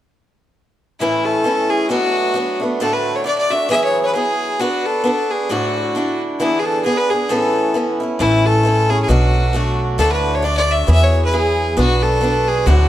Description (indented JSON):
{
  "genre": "celtic folk, Celtic polka",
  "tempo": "134 BPM",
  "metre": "2/4",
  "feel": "swing 58% on 8ths",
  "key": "A major",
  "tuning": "A4 = 439 Hz",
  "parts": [
    { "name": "clear fiddle", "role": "melody", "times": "1.0-12.9 s", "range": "E4 to E5", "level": "-18 LUFS", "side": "left 1 dB", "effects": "none" },
    { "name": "picked swing-style acoustic guitar", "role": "accompaniment", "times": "1.0-12.9 s", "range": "D2 to B4", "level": "-19 LUFS", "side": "right 1 dB", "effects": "none" },
    { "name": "upright bass", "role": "bass", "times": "8.2-12.9 s", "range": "A1 to E2", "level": "-16 LUFS", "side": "equal", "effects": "none" }
  ],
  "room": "moderate recital hall reverb, RT60 1.6 s",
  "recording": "dark, warm production",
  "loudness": "-14 LUFS",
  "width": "side -12 dB against mid",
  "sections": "1.0-8.2 A section; 8.2-12.9 A section",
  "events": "none",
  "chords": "1.0 A; 1.9 Bm7; 2.8 D; 3.7 Eadd9; 4.6 Bm; 5.5 Dadd9; 6.4 E7; 7.3 Aadd9; 8.2 A; 9.1 Bm7; 10.0 D; 10.9 Eadd9; 11.8 Bm"
}